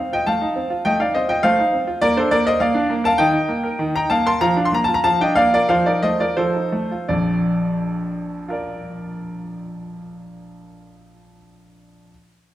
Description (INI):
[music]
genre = classical-period piano sonatina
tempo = 84-103 BPM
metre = 4/4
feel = straight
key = Bb major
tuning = A4 = 440 Hz
[part]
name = clear baby grand piano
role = solo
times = 0.0-12.1 s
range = Bb1 to C6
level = -17 LUFS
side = equal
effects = none
[sound]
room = wet recital hall reverb, RT60 1.4 s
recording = none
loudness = -16 LUFS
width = side -13 dB against mid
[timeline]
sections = 0.0-7.1 A section; 7.1-9.9 B section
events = slowing down 0.8-7.1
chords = 0.0 F7/A; 2.0 Bb; 3.2 Eb; 4.4 Bb/F; 5.7 F7; 7.1 Bb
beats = 0.26 0.84 1.43 | 2.01 2.60 3.19 3.80 | 4.42 5.05 5.70 6.38 | 7.08 7.78 8.48 9.18